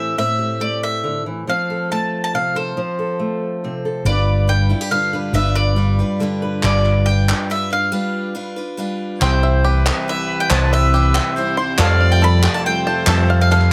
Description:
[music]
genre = indie folk with a building arrangement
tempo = 140 BPM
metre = 3/4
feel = straight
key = unclear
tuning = A4 = 441 Hz
[part]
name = bowl-back mandolin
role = melody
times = 0.0-13.7 s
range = C5 to B5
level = -24 LUFS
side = equal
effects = none
[part]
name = fingerpicked steel-string acoustic guitar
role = accompaniment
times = 0.0-7.9 s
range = G2 to B4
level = -25 LUFS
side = equal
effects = none
[part]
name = fingered electric bass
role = bass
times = 4.0-13.7 s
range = G1 to F2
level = -17 LUFS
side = equal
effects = none
[part]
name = picked steel-string acoustic guitar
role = accompaniment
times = 4.1-13.7 s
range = C3 to C5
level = -28 LUFS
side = equal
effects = none
[part]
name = group handclap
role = percussion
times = 6.6-13.7 s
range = none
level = -25 LUFS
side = equal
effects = none
[part]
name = clear trumpet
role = second line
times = 9.2-13.7 s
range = B4 to D5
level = -27 LUFS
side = equal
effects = none
[part]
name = clear concert grand piano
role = accompaniment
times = 9.2-13.7 s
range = F1 to E5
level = -30 LUFS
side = equal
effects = none
[part]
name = warm chamber string section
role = sustained chords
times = 9.2-13.7 s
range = C3 to G4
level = -30 LUFS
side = equal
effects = none
[part]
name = bluegrass banjo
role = arpeggios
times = 9.2-13.7 s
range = C4 to C6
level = -27 LUFS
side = equal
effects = none
[sound]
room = light reverb, studio ambience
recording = none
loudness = -18 LUFS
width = mono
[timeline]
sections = 0.0-4.1 A section; 4.1-9.2 B section; 9.2-13.7 C section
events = break 7.9-9.2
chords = 0.0 Am7; 1.5 F; 4.1 G7; 9.2 C; 11.8 Fadd9

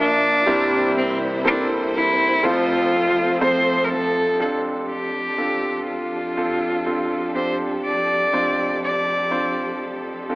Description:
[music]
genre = pop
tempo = 61 BPM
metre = 4/4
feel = straight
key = F major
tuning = A4 = 439 Hz
[part]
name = rich cello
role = melody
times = 0.0-9.8 s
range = C4 to D5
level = -20 LUFS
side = equal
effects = none
[part]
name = clear grand piano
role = accompaniment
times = 0.0-10.4 s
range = F1 to C5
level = -24 LUFS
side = right 1 dB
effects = none
[part]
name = dark studio string section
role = sustained chords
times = 0.0-10.4 s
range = F2 to E5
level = -28 LUFS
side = equal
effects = none
[part]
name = fingerpicked steel-string acoustic guitar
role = arpeggios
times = 0.0-4.4 s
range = C3 to Bb4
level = -30 LUFS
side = left 2 dB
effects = none
[sound]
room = moderate plate reverb, RT60 3.3 s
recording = AM radio sound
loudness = -18 LUFS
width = side -22 dB against mid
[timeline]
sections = 0.0-4.4 A section; 4.4-10.4 B section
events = none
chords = 0.5 C7; 2.4 F; 4.4 F6

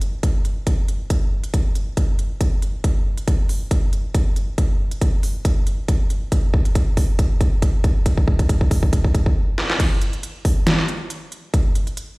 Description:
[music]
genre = dubstep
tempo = 138 BPM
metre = 4/4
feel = swing 54% on 16ths, half-time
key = none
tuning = none
[part]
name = dubstep drum kit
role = drums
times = 0.0-12.1 s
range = crash cymbal, hi-hat, snare drum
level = -25 LUFS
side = equal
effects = high-pass filter on hats, studio reverb, high-pass filter on snare, high-pass filter on cymbals
[part]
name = electronic kick drum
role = drums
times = 0.2-11.6 s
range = none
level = -18 LUFS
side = equal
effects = studio reverb
[sound]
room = little or no reverb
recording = played on a big sound system in a bare room, stone room reverb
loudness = -17 LUFS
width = side -25 dB against mid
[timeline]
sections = 0.0-9.8 A section; 9.8-12.2 B section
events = build-up 0.0-9.8; drum fill 2.8-9.4, 9.6; stop 9.4-9.8; drop 9.8-12.2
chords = none

